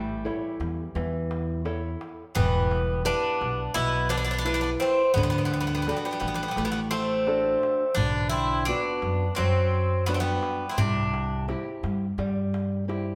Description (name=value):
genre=greek folk, Greek bouzouki band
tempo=86 BPM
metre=4/4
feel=straight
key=unclear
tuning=A4 = 440 Hz
part: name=Greek bouzouki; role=melody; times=0.0-11.4 s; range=G3 to E4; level=-30 LUFS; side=equal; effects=none
part: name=Greek bouzouki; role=second line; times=0.0-11.4 s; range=E3 to C4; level=-37 LUFS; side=equal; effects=none
part: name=nylon-string guitar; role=accompaniment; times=0.0-13.2 s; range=B2 to C#5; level=-33 LUFS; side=equal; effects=none
part: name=upright bass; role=bass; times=0.0-13.2 s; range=E1 to G2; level=-32 LUFS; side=equal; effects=none
part: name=darbuka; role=percussion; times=0.1-13.1 s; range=none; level=-35 LUFS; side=equal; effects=none
room=wet stone room reverb, RT60 1.5 s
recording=band playing live in one room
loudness=-26 LUFS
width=mono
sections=0.0-13.2 A section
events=none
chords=0.0 A; 2.4 Em; 5.2 D; 8.0 Bm; 10.8 C